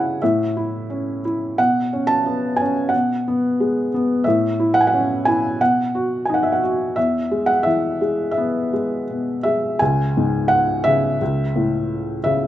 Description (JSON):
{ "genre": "classical, lyrical solo piano", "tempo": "82-91 BPM", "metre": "4/4", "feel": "rubato", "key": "E major", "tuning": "A4 = 440 Hz", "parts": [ { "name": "felt-muted upright piano", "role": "solo", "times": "0.0-12.5 s", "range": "C#2 to A5", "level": "-17 LUFS", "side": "equal", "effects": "none" } ], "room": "moderate recital hall reverb, RT60 1.7 s", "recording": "none", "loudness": "-17 LUFS", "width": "side -13 dB against mid", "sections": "0.0-9.8 A section; 9.8-12.5 B section", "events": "none", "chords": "0.2 A; 1.6 Bsus2; 2.9 G#m7/B; 4.3 A; 5.6 B; 7.0 E; 9.8 C#5; 11.2 A/C#" }